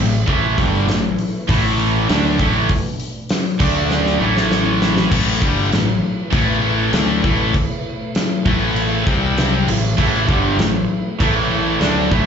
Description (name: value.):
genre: hard rock.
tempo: 99 BPM.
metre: 4/4.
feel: straight.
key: A minor.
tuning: A4 = 440 Hz.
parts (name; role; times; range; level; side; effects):
dark analog pad; sustained chords; 0.7-12.3 s; A3 to E5; -31 LUFS; left 1 dB; chorus.
distorted electric guitar; riff; 0.0-12.3 s; G2 to D4; -22 LUFS; left 9 dB; distortion.
high-gain distorted guitar; riff; 0.0-12.3 s; G2 to D4; -21 LUFS; right 2 dB; distortion.
overdriven semi-hollow guitar; riff; 0.0-5.1, 10.0-12.3 s; G2 to D4; -22 LUFS; right 12 dB; none.
fuzz fingered electric bass; bass; 0.0-12.3 s; G1 to D2; -20 LUFS; equal; overdrive.
big rock drum kit; drums; 0.3-12.3 s; crash cymbal, hi-hat, kick drum, snare drum; -20 LUFS; left 1 dB; none.
room: light reverb.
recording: live gig heard through the venue's PA, club reverb, nothing above 7.7 kHz.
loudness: -15 LUFS.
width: side -7 dB against mid.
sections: 0.0-5.1 A section; 5.1-12.3 B section.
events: drum fill 3.9-5.1.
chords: 0.0 A5; 3.6 D5; 4.2 A5; 9.1 C5; 9.7 A5.